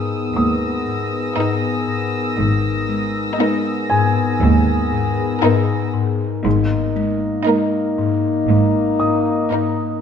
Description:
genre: cinematic.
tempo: 59 BPM.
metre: 4/4.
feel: straight.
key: G# minor.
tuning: A4 = 440 Hz.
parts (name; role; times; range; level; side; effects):
warm symphonic violin section; melody; 0.0-10.0 s; A#4; -25 LUFS; left 3 dB; none.
dark chamber violin section; second line; 0.0-10.0 s; D#4; -23 LUFS; equal; none.
dark studio viola section; accompaniment; 0.0-10.0 s; A#3 to B3; -24 LUFS; right 4 dB; none.
glass harmonica; sustained chords; 0.0-10.0 s; B3 to D#5; -25 LUFS; left 1 dB; none.
warm French horn section; sustained chords; 0.0-10.0 s; A#3 to G#4; -23 LUFS; left 3 dB; none.
buzzing marimba with soft mallets; riff; 0.0-9.8 s; G#2 to G#3; -22 LUFS; left 5 dB; none.
warm symphonic violin section; texture; 0.0-5.9 s; D#6 to A#6; -27 LUFS; left 1 dB; none.
dark symphonic double bass section; bass; 0.4-9.3 s; G#1 to D#2; -21 LUFS; right 5 dB; none.
warm symphonic cello section; bass; 0.4-9.3 s; D#2 to G#2; -22 LUFS; right 2 dB; none.
dark concert grand piano; texture; 0.4-10.0 s; G#5 to D#6; -25 LUFS; equal; none.
room: moderate scoring stage reverb, RT60 1.5 s.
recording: none.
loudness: -16 LUFS.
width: side -7 dB against mid.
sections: 0.0-10.0 A section.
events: none.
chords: 0.0 G#madd9; 6.5 D#sus4/G#.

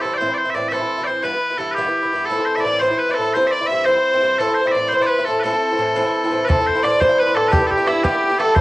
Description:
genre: celtic folk, Celtic jig.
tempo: 115 BPM (dotted quarters).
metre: 6/8.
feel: straight.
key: A minor.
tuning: A4 = 440 Hz.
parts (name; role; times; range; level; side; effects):
loud bright bagpipes; melody; 0.0-8.6 s; E4 to E5; -20 LUFS; equal; cassette tape.
Irish bouzouki; accompaniment; 0.0-8.6 s; G2 to E4; -23 LUFS; equal; none.
rich fiddle; second line; 2.3-8.6 s; E4 to E5; -19 LUFS; left 1 dB; none.
cimbalom; second line; 6.5-8.6 s; E4 to D5; -21 LUFS; right 2 dB; none.
bodhran; percussion; 6.5-8.6 s; none; -20 LUFS; equal; none.
room: wet studio ambience, RT60 0.5 s.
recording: home recording on cassette.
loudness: -16 LUFS.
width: side -18 dB against mid.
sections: 0.0-6.5 A section; 6.5-8.6 A section.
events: none.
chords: 0.2 Am; 1.3 Em; 2.3 Am; 3.4 C; 4.4 Am; 7.5 Em.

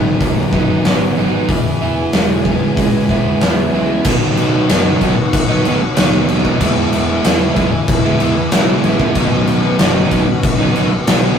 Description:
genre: rock, shoegaze and dream pop.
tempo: 94 BPM.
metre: 4/4.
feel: straight.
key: unclear.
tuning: A4 = 439 Hz.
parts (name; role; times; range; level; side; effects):
string machine, violins; sustained chords; 0.0-11.4 s; C#4 to G#5; -24 LUFS; left 1 dB; ensemble chorus.
biting overdriven guitar; riff; 0.0-11.4 s; G#2 to E4; -22 LUFS; left 4 dB; none.
overdriven semi-hollow guitar; riff; 0.0-11.4 s; G#2 to E4; -17 LUFS; right 3 dB; none.
fuzz picked electric bass; bass; 0.0-11.4 s; E1 to B2; -24 LUFS; left 1 dB; overdrive.
huge arena drum kit; drums; 0.2-11.2 s; crash cymbal, hi-hat, kick drum, snare drum; -15 LUFS; left 1 dB; none.
tambourine; percussion; 4.7-11.2 s; none; -36 LUFS; left 9 dB; none.
room: wet studio reverb, RT60 0.5 s.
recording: rough rehearsal-room recording.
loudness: -12 LUFS.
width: side -7 dB against mid.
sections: 0.0-4.1 A section; 4.1-11.4 B section.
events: none.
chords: 0.0 G#m7; 1.5 E; 4.1 Badd9; 6.6 Emaj7; 9.2 Badd9.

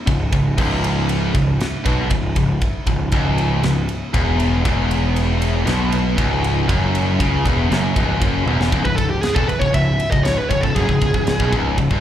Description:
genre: heavy metal.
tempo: 118 BPM.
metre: 4/4.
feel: straight.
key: C# minor.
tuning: A4 = 439 Hz.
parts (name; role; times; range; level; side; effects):
warm analog pad; sustained chords; 0.0-12.0 s; C#3 to E4; -34 LUFS; equal; none.
high-gain distorted guitar; riff; 0.1-12.0 s; C#2 to C#3; -24 LUFS; right 8 dB; distortion, slapback echo.
tight distorted guitar; riff; 0.1-12.0 s; C#2 to C#3; -23 LUFS; left 8 dB; distortion.
fuzz picked electric bass; bass; 0.1-12.0 s; C#1 to C#2; -20 LUFS; equal; overdrive.
tight metal drum kit; drums; 0.1-12.0 s; crash cymbal, kick drum, ride cymbal, snare drum, toms; -22 LUFS; equal; none.
high-gain lead guitar; melody; 8.9-11.5 s; G4 to E5; -21 LUFS; equal; distortion, slapback echo.
room: little or no reverb.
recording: live gig heard through the venue's PA, club reverb.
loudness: -16 LUFS.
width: side -11 dB against mid.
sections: 0.0-8.7 A section; 8.7-12.0 B section.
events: half time 0.0-8.7; drum fill 8.5; lead electric guitar solo 8.7-12.0.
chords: 0.0 C#m.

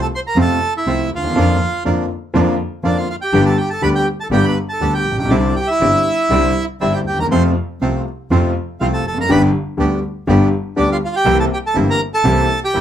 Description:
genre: tango.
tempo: 121 BPM.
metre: 4/4.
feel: rubato.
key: F major.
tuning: A4 = 438 Hz.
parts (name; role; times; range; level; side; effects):
bandoneon; melody; 0.0-12.8 s; D4 to C6; -18 LUFS; right 2 dB; none.
warm concert grand piano; accompaniment; 0.0-12.8 s; G1 to G4; -17 LUFS; left 2 dB; none.
bandoneon; stabs; 0.0-12.8 s; A3 to G4; -24 LUFS; right 4 dB; none.
rich double bass; bass; 0.0-12.8 s; F1 to F2; -20 LUFS; right 1 dB; none.
room: moderate club reverb, RT60 0.6 s.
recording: none.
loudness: -14 LUFS.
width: side -10 dB against mid.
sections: 0.0-12.8 A section.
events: none.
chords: 0.0 F; 1.4 Bb/F; 3.3 G; 5.3 Cadd9; 7.3 F; 9.3 G; 11.3 C7.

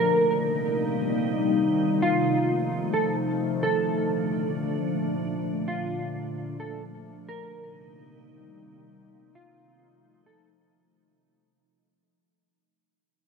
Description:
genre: hip hop.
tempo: 131 BPM.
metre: 4/4.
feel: half-time.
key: Bb major.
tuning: A4 = 439 Hz.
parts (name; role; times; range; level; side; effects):
mellow electric guitar; melody; 0.0-10.5 s; F4 to Bb4; -27 LUFS; right 2 dB; analog chorus, ping-pong delay.
glassy FM pad; sustained chords; 0.0-10.9 s; Bb2 to Eb4; -26 LUFS; left 1 dB; ensemble chorus, built-in reverb.
room: wet huge ambient reverb, RT60 4.5 s.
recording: none.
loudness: -24 LUFS.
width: side -5 dB against mid.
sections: 0.0-11.0 A section.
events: fade-out 0.0-11.0.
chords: 0.0 Eb6; 1.8 F7; 3.6 Bbmaj7; 7.3 Eb6; 9.1 F7.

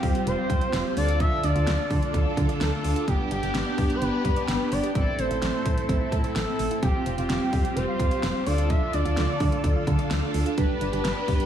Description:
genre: synth-pop.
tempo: 128 BPM.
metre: 4/4.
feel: straight.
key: unclear.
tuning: A4 = 437 Hz.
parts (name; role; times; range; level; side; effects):
expressive portamento lead; melody; 0.0-11.5 s; G4 to E5; -30 LUFS; left 2 dB; chorus, tape echo.
analog synth brass; accompaniment; 0.0-11.5 s; B3 to B4; -31 LUFS; right 2 dB; chorus.
phased string machine; sustained chords; 0.0-11.5 s; D3 to A4; -31 LUFS; equal; ensemble chorus, phaser.
soft round pluck; arpeggios; 0.0-11.5 s; E3 to D5; -35 LUFS; right 5 dB; chorus, tape echo.
solid FM bass; bass; 0.0-11.4 s; F1 to D3; -27 LUFS; equal; none.
pop drum kit; drums; 0.0-11.5 s; hi-hat, kick drum, snare drum; -27 LUFS; equal; gated reverb.
room: light reverb.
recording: studio ambience.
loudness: -22 LUFS.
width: side -10 dB against mid.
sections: 0.0-11.5 A section.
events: none.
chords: 0.0 Fsus2; 1.0 Dm; 3.1 G; 5.0 Am; 6.8 Fsus2; 8.5 Dm; 10.6 G.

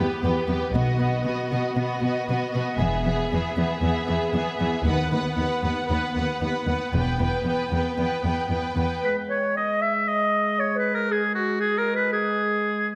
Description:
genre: cinematic, heroic adventure film score.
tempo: 117 BPM.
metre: 4/4.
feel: straight.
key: unclear.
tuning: A4 = 442 Hz.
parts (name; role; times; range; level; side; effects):
dark symphonic violin section; melody; 0.0-9.0 s; B4 to G5; -33 LUFS; equal; none.
warm symphonic violin section; second line; 0.0-9.0 s; F#4 to B4; -32 LUFS; equal; none.
warm symphonic viola section; accompaniment; 0.0-9.0 s; B3; -32 LUFS; equal; none.
rich studio cello section; bass; 0.0-8.8 s; D#2 to B2; -29 LUFS; equal; none.
clear symphonic double bass section; bass; 0.7-7.2 s; E1 to D#2; -30 LUFS; equal; none.
timpani; percussion; 0.8-1.5 s; B2; -33 LUFS; equal; none.
clear oboe; second line; 9.0-12.9 s; F#4 to E5; -26 LUFS; equal; none.
warm clarinet; second line; 9.0-12.9 s; F#4 to E5; -30 LUFS; equal; none.
mellow French horn section; sustained chords; 9.0-13.0 s; G#3; -32 LUFS; equal; none.
room: wet scoring stage reverb, RT60 1.9 s.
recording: none.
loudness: -24 LUFS.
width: mono.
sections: 0.0-9.0 A section; 9.0-13.0 B section.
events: build-up 0.0-9.0.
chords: 0.0 Em; 0.7 B; 2.8 E; 4.9 B/D#; 6.9 Em; 9.0 N.C..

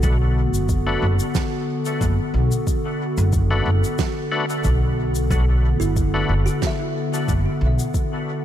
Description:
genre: ambient dub.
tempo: 91 BPM.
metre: 4/4.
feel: swing 54% on 16ths.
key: B minor.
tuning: A4 = 439 Hz.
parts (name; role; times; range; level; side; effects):
warbly tape-like pad; sustained chords; 0.0-8.4 s; D3 to A4; -24 LUFS; left 1 dB; chorus, built-in reverb, vintage 12-bit sampler grit.
upright bass; bass; 0.0-7.8 s; F#1 to B1; -20 LUFS; equal; none.
electronic kick drum; drums; 0.0-8.1 s; none; -23 LUFS; equal; overdrive.
shaker and snare drum; drums; 0.0-8.1 s; none; -30 LUFS; right 4 dB; dub echo.
overdriven tonewheel organ; stabs; 0.9-6.3 s; A3 to B4; -29 LUFS; left 3 dB; chorus vibrato, low-pass filter, dub echo.
kalimba; arpeggios; 5.8-8.4 s; E4 to E5; -30 LUFS; right 2 dB; dub echo.
room: studio ambience.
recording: none.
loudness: -18 LUFS.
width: side -11 dB against mid.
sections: 0.0-8.4 A section.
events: none.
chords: 0.0 Bm7.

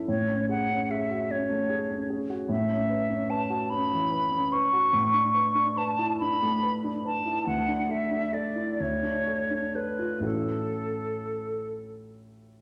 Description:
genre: classical, impressionist duo for flute and grand piano.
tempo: 39-50 BPM (dotted quarters).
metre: 6/8.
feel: rubato.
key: A major.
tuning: A4 = 440 Hz.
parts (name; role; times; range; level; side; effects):
warm concert grand piano; accompaniment; 0.0-12.6 s; A1 to B4; -32 LUFS; equal; none.
hollow concert flute; melody; 0.1-11.7 s; A4 to C#6; -29 LUFS; equal; none.
room: wet recital hall reverb, RT60 1.6 s.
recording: none.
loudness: -27 LUFS.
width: mono.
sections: 0.0-12.6 A section.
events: none.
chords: 0.1 F#madd9/A; 2.5 A69; 4.9 Bm11/A; 7.5 Dsus2; 8.8 Dm; 10.2 A6.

